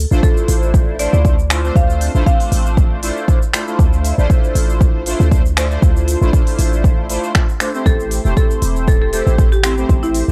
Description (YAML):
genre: afro house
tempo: 118 BPM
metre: 4/4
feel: swing 54% on 16ths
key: D minor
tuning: A4 = 438 Hz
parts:
  - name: marimba with hard mallets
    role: melody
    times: 0.0-2.8, 7.9-10.3 s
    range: E4 to F5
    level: -24 LUFS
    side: equal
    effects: tape echo
  - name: warm 808-style bass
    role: bass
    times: 0.0-10.3 s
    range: E1 to D2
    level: -19 LUFS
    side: equal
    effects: tube saturation, sidechain pumping
  - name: mellow synth brass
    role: stabs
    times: 0.1-10.3 s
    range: A3 to C5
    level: -24 LUFS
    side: equal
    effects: chorus, phaser, sidechain pumping, analog delay
  - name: afro-pop drum kit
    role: drums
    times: 0.1-10.3 s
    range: finger snaps, hi-hat, shaker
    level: -25 LUFS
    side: equal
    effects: none
  - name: electronic kick drum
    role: drums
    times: 0.2-10.0 s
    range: none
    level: -16 LUFS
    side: equal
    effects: none
room: little or no reverb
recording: dry, gritty hardware recording, cassette tape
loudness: -15 LUFS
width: mono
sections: 0.0-10.3 A section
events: none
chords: 0.0 Dm9; 7.9 Am7